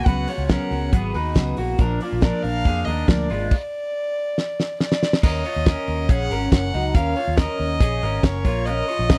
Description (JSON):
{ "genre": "jangly indie pop", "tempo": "140 BPM", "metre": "4/4", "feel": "straight", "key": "Eb minor", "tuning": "A4 = 441 Hz", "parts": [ { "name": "warm violin", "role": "melody", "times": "0.0-9.2 s", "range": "Db5 to Gb5", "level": "-29 LUFS", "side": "equal", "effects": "slapback echo" }, { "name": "picked steel-string acoustic guitar", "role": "accompaniment", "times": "0.0-3.5 s", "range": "Bb2 to Bb4", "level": "-30 LUFS", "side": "equal", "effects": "none" }, { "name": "electric guitar through a small old amp", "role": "arpeggios", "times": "0.0-9.2 s", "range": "Gb3 to D5", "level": "-29 LUFS", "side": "equal", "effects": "phaser" }, { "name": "vintage muted fingered electric bass", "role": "bass", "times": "0.0-9.2 s", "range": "Gb1 to F2", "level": "-28 LUFS", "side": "equal", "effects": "none" }, { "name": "loose indie drum kit", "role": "drums", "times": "0.1-9.2 s", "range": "crash cymbal, hi-hat, kick drum, ride cymbal, snare drum", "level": "-20 LUFS", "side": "equal", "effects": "none" } ], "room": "little or no reverb", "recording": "dry, close 1970s-style studio recording", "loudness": "-22 LUFS", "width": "mono", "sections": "0.0-5.2 A section; 5.2-9.2 B section", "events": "stop 3.5-5.2; drum fill 4.4-5.2", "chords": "0.0 Db7sus4; 1.8 Bb; 5.2 Ebm7; 8.5 Bbm", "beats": "| 0.07 0.50 0.93 1.36 | 1.79 2.23 2.65 3.09 | 3.52 3.95 4.38 4.80 | 5.23 5.66 6.09 6.52 | 6.95 7.38 7.81 8.24 | 8.66 9.10" }